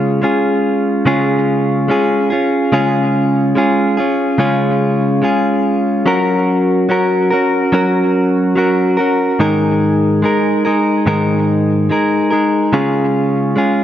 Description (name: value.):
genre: pop.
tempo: 72 BPM.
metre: 4/4.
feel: straight.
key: Db major.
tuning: A4 = 439 Hz.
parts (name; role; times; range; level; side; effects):
direct-recorded clean electric guitar; solo; 0.0-13.8 s; Ab2 to Bb4; -12 LUFS; equal; digital delay.
room: moderate plate reverb, RT60 2.8 s.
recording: dark, warm production, nothing above 7.6 kHz.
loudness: -12 LUFS.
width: side -11 dB against mid.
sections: 0.0-13.8 A section.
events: none.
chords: 0.0 Db; 6.1 Gb; 9.4 Absus2; 12.7 Db.